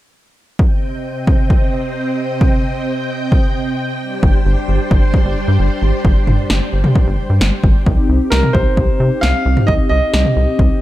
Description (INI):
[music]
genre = synth-pop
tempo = 132 BPM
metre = 4/4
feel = straight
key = C minor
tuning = A4 = 440 Hz
[part]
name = string machine, violins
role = sustained chords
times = 0.6-7.8 s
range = C3 to G5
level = -20 LUFS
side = right 1 dB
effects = ensemble chorus
[part]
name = house drum kit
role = drums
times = 0.6-10.7 s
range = kick drum, snare drum, toms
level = -14 LUFS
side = equal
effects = none
[part]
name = rubbery square bass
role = bass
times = 4.2-10.7 s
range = G1 to C3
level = -15 LUFS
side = equal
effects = none
[part]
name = mellow synth brass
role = accompaniment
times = 7.9-10.8 s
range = C4 to G4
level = -20 LUFS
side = left 2 dB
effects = chorus
[part]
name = warm concert grand piano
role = melody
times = 8.3-10.8 s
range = Bb4 to F5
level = -18 LUFS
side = right 1 dB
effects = tape echo
[sound]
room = light reverb, digital ambience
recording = dark, warm production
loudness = -12 LUFS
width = side -15 dB against mid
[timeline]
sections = 0.6-7.9 A section; 7.9-10.8 B section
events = none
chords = 0.6 Cm; 4.0 Gsus4; 7.9 Cm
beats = | 0.59 1.05 1.50 1.96 | 2.41 2.87 3.32 3.77 | 4.23 4.68 5.14 5.59 | 6.05 6.50 6.96 7.41 | 7.87 8.32 8.77 9.23 | 9.68 10.14 10.59